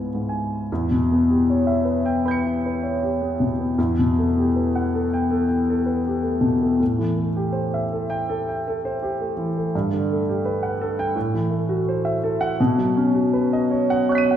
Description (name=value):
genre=classical, impressionist solo piano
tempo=65-85 BPM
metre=4/4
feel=rubato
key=E dorian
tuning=A4 = 444 Hz
part: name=warm grand piano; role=solo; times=0.0-14.4 s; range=E2 to D#7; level=-19 LUFS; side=equal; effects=none
room=wet scoring stage reverb, RT60 1.8 s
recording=heard from further back in the room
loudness=-19 LUFS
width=side -10 dB against mid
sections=0.7-14.4 A section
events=none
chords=0.0 C#m7; 0.7 Em6; 3.8 Gmaj9/E; 6.8 Am7; 9.7 Gmaj9; 11.2 Am6; 12.6 Badd9